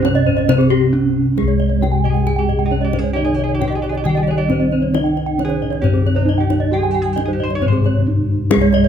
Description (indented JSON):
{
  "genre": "Balinese gamelan",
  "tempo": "134 BPM",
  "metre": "4/4",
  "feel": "straight",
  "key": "C pelog",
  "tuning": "A4 = 440 Hz",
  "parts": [
    { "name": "gamelan-type bronze metallophone", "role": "melody", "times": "0.0-8.9 s", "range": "Ab3-20c to Ab4-20c", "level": "-21 LUFS", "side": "right 3 dB", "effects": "none" },
    { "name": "gamelan-type bronze metallophone", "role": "accompaniment", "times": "0.0-8.9 s", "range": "C3 to Ab3-20c", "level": "-25 LUFS", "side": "right 4 dB", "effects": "none" },
    { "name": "gamelan-type bronze metallophone", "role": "arpeggios", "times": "0.0-8.9 s", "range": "Ab4-20c to Ab5-20c", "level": "-24 LUFS", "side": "right 7 dB", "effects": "none" },
    { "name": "gamelan-type bossed gongs", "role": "bass", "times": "0.0-8.9 s", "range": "C2 to Ab4-20c", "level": "-18 LUFS", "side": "left 2 dB", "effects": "none" },
    { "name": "kendang", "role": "percussion", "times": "0.0-8.8 s", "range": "none", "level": "-26 LUFS", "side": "left 5 dB", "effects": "none" },
    { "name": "gamelan-type bronze metallophone", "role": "arpeggios", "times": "0.1-8.8 s", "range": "G4-30c to Ab5-20c", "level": "-24 LUFS", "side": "left 4 dB", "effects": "none" },
    { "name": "hollow-body jazz guitar", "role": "second line", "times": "2.1-8.8 s", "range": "Eb4-30c to Db5+20c", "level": "-27 LUFS", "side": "right 2 dB", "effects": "none" }
  ],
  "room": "light reverb",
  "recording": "close, detailed microphones",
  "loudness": "-14 LUFS",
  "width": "side -8 dB against mid",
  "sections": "0.0-1.4 A section; 1.4-8.9 B section",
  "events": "drum fill 1.0-1.4",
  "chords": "none"
}